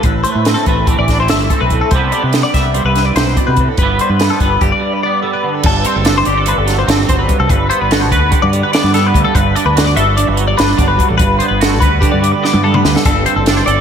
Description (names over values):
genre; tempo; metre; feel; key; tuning
math rock and midwest emo; 291 BPM (eighths); 9/8; straight; G major; A4 = 440 Hz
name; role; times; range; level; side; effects
twangy electric guitar; accompaniment; 0.0-13.8 s; G2 to B4; -18 LUFS; right 8 dB; analog chorus, slapback echo
twelve-string electric guitar; arpeggios; 0.0-13.8 s; G4 to E5; -16 LUFS; left 4 dB; phaser, digital delay
growling fingered electric bass; bass; 0.0-13.8 s; F#1 to C3; -16 LUFS; equal; overdrive
compact cocktail drum kit; drums; 0.0-13.8 s; crash cymbal, hi-hat, kick drum, snare drum, splash cymbal, toms; -15 LUFS; equal; none
room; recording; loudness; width
moderate concert hall reverb, RT60 1.9 s; big arena sound; -10 LUFS; side -8 dB against mid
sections
0.0-5.6 A section; 5.6-13.8 B section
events
break 4.7-5.6; drum fill 12.4-13.1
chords
0.0 Am9; 1.9 Cmaj7; 3.8 G6; 4.6 Gadd9; 5.6 D7; 7.5 Gmaj9; 9.3 Bm7/G; 11.2 Gmaj9; 13.1 D7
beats
| 0.04 0.24 0.45 0.66 0.87 1.08 1.29 1.50 1.71 | 1.91 2.12 2.33 2.54 2.75 2.95 3.16 3.37 3.58 | 3.78 3.99 4.20 4.40 4.61 4.82 5.02 5.23 5.44 | 5.64 5.85 6.05 6.26 6.47 6.67 6.88 7.08 7.29 | 7.49 7.70 7.90 8.11 8.31 8.52 8.73 8.93 9.14 | 9.34 9.55 9.75 9.96 10.16 10.37 10.58 10.78 10.99 | 11.19 11.40 11.61 11.81 12.02 12.22 12.43 12.64 12.84 | 13.05 13.26 13.46 13.67